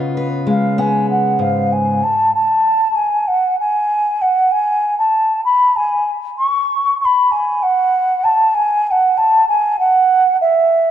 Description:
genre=folk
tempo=97 BPM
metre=4/4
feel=straight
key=unclear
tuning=A4 = 440 Hz
part: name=fingerpicked steel-string acoustic guitar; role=accompaniment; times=0.0-2.0 s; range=G#2 to B4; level=-17 LUFS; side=left 1 dB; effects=none
part: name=mellow hollow wooden flute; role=melody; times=0.5-10.9 s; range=E5 to C#6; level=-13 LUFS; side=right 1 dB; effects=digital delay
room=moderate scoring stage reverb, RT60 2.0 s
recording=dark, warm production, nothing above 10.9 kHz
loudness=-13 LUFS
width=side -10 dB against mid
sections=0.0-2.0 A section; 2.0-10.9 B section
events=none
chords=0.0 C#7; 2.0 N.C.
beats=0.16 0.78 1.40 | 2.02 2.64 3.26 3.88 | 4.50 5.12 5.75 6.37 | 6.99 7.61 8.23 8.85 | 9.47 10.09 10.71

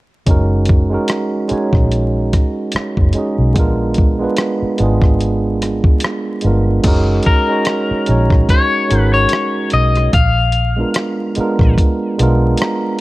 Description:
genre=R&B, neo-soul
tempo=73 BPM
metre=4/4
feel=swing 56% on 16ths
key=F# major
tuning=A4 = 440 Hz
part: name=tine electric piano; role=accompaniment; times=0.3-13.0 s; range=G#3 to A#5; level=-18 LUFS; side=right 2 dB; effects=none
part: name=vintage muted fingered electric bass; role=bass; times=0.3-12.5 s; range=F#1 to B1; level=-15 LUFS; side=equal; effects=none
part: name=dusty soul sampler-style drum kit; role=drums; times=0.3-12.8 s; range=crash cymbal, hi-hat, kick drum, rim click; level=-15 LUFS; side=equal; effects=none
part: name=electric guitar at the edge of break-up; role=melody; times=7.3-11.7 s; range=A#4 to E#5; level=-18 LUFS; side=left 4 dB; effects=none
room=digital ambience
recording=vinyl crackle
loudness=-12 LUFS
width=side -18 dB against mid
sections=0.3-6.8 A section; 6.8-13.0 B section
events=tine electric piano fill 12.2-13.0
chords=0.3 F#6; 3.6 A#7b9; 6.8 F#6; 10.1 A#7b9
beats=| 0.27 1.09 1.91 2.73 | 3.55 4.38 5.20 6.02 | 6.84 7.66 8.49 9.31 | 10.13 10.95 11.77 12.60

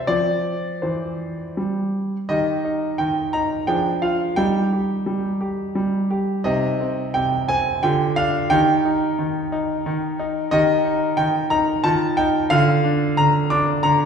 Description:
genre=classical-period piano sonatina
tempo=79-92 BPM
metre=3/4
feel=rubato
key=Eb major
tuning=A4 = 438 Hz
part: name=clear grand piano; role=solo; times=0.0-14.1 s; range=C3 to D6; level=-18 LUFS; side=equal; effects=none
room=wet recital hall reverb, RT60 1.4 s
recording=heard from further back in the room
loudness=-18 LUFS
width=side -6 dB against mid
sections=0.0-2.3 A section; 2.3-14.1 B section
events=none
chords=0.1 F5; 2.3 Eb; 3.7 Fm69; 4.4 Eb/G; 6.4 Cm; 7.8 G5/D; 8.5 Eb; 11.8 F7/Eb; 12.5 Dm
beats=| 0.08 0.83 1.57 | 2.30 2.99 3.69 | 4.38 5.06 5.75 | 6.45 7.14 7.83 | 8.51 9.19 9.86 | 10.52 11.18 11.85 | 12.52 13.19 13.85

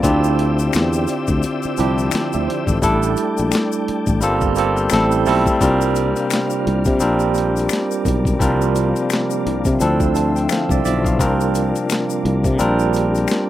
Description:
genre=R&B, neo-soul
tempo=86 BPM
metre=4/4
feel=swing 59% on 16ths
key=D minor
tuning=A4 = 440 Hz
part: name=barky tine electric piano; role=accompaniment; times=0.0-13.5 s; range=F3 to A5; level=-19 LUFS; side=right 2 dB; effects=overdrive, auto-pan
part: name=tonewheel organ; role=sustained chords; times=0.0-13.5 s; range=C3 to E5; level=-24 LUFS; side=left 4 dB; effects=chorus vibrato, lush chorus
part: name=sustaining fretless electric bass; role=bass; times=0.0-13.3 s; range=G1 to C3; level=-20 LUFS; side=left 1 dB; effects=none
part: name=boom bap sampler-style drum kit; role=drums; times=0.0-13.5 s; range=hi-hat, kick drum, snare drum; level=-22 LUFS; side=left 1 dB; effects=none
part: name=tube shaker and finger snaps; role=percussion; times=0.0-13.5 s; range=none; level=-29 LUFS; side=left 12 dB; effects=none
room=little or no reverb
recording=rough home demo mix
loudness=-15 LUFS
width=side -13 dB against mid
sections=0.0-5.6 A section; 5.6-13.5 B section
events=tine electric piano fill 9.8-11.2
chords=0.0 Dm11; 2.8 A7sus4; 4.2 Gm11; 4.9 Am7; 5.6 C9sus4; 7.0 Bb69; 8.4 C9sus4; 9.8 Dm9; 11.2 C9sus4; 12.6 Bb69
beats=| 0.03 0.73 1.42 2.12 | 2.82 3.52 4.21 4.91 | 5.61 6.31 7.01 7.70 | 8.40 9.10 9.80 10.49 | 11.19 11.89 12.59 13.29

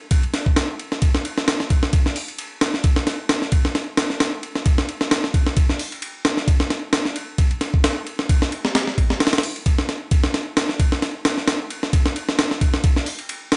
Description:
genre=breakbeat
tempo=132 BPM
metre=4/4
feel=swing 55% on 16ths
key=none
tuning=none
part: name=breakbeat sampler-style drum kit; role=drums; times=0.1-13.6 s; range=hi-hat, kick drum, ride cymbal, snare drum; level=-21 LUFS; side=equal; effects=none
room=little or no reverb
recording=nothing above 10.5 kHz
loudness=-21 LUFS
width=mono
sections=0.0-13.6 A section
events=none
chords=none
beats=0.11 0.57 | 1.02 1.48 1.93 2.39 | 2.84 3.29 3.75 4.20 | 4.66 5.11 5.57 6.02 | 6.48 6.93 7.39 7.84 | 8.29 8.75 9.20 9.66 | 10.11 10.57 11.02 11.48 | 11.93 12.39 12.84 13.29

